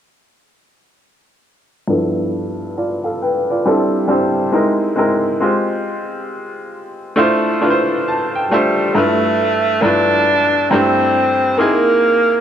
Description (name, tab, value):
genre	hip hop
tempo	68 BPM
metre	4/4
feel	swing 63% on 16ths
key	unclear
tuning	A4 = 439 Hz
part	bright upright piano	accompaniment	1.9-12.4 s	G2 to A5	-16 LUFS	equal	cassette tape, low-pass filter
part	breathy tenor saxophone	melody	8.5-12.4 s	G3 to D4	-14 LUFS	right 1 dB	low-pass filter
room	moderate plate reverb, RT60 3.0 s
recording	none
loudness	-13 LUFS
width	side -9 dB against mid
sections	1.9-8.9 A section; 8.9-12.4 B section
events	filter sweep on upright piano 1.9-8.9; upright piano fill 7.6-8.9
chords	1.9 G13; 3.6 C69/G; 4.5 C7alt; 5.4 Fmadd9; 7.2 Dm9; 8.9 G13; 10.7 C69/G; 11.6 C7alt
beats	| 1.88 2.76 3.64 4.53 | 5.41 6.29 7.17 8.05 | 8.94 9.82 10.70 11.59